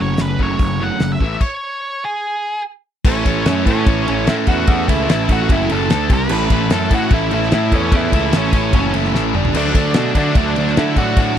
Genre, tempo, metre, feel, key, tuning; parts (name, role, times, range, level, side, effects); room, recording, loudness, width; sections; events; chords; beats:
classic rock; 148 BPM; 4/4; straight; A major; A4 = 440 Hz
octave-fuzz lead guitar; melody; 0.0-11.4 s; C#4 to F#5; -22 LUFS; equal; distortion, slapback echo
distorted electric guitar; riff; 0.0-11.4 s; F#2 to D5; -22 LUFS; left 14 dB; distortion
sludgy distorted guitar; riff; 0.0-11.4 s; A2 to D5; -21 LUFS; right 15 dB; overdrive
overdriven picked electric bass; bass; 0.0-11.4 s; F#1 to D3; -21 LUFS; left 1 dB
damped 70s drum kit; drums; 0.2-11.3 s; crash cymbal, hi-hat, kick drum, ride cymbal, snare drum, toms; -18 LUFS; equal
octave-fuzz lead guitar; second line; 9.5-11.3 s; A3 to D4; -26 LUFS; right 4 dB; distortion
little or no reverb; dry, close 1970s-style studio recording; -14 LUFS; side -9 dB against mid
0.0-3.1 A section; 3.1-11.4 B section
stop 1.4-3.1; drum fill 9.1-9.5
0.0 F#m; 1.2 A; 2.2 N.C.; 3.1 A; 5.9 D5; 6.1 C5; 6.3 A; 9.3 G5; 9.5 D
0.20 0.61 1.02 | 1.43 1.83 2.24 2.65 | 3.06 3.46 3.87 4.27 | 4.68 5.08 5.49 5.90 | 6.30 6.71 7.11 7.52 | 7.92 8.33 8.74 9.14 | 9.55 9.95 10.36 10.76 | 11.17